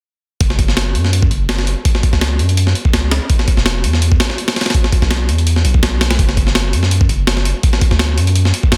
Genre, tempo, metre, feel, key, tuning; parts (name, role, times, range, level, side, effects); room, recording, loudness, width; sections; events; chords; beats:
drum and bass, jungle; 166 BPM; 4/4; swing 53% on 16ths; A4 = 441 Hz
long sustained 808-style bass; bass; 0.4-8.8 s; E1 to F#2; -17 LUFS; equal; tube saturation
breakbeat sampler-style drum kit; drums; 0.4-8.8 s; hi-hat, kick drum, snare drum; -17 LUFS; equal
little or no reverb; dense, heavily limited modern master; -15 LUFS; mono
0.4-8.8 A section
| 0.41 0.77 1.13 1.49 | 1.85 2.21 2.57 2.94 | 3.30 3.66 4.02 4.38 | 4.74 5.10 5.47 5.83 | 6.19 6.55 6.91 7.27 | 7.63 8.00 8.36 8.72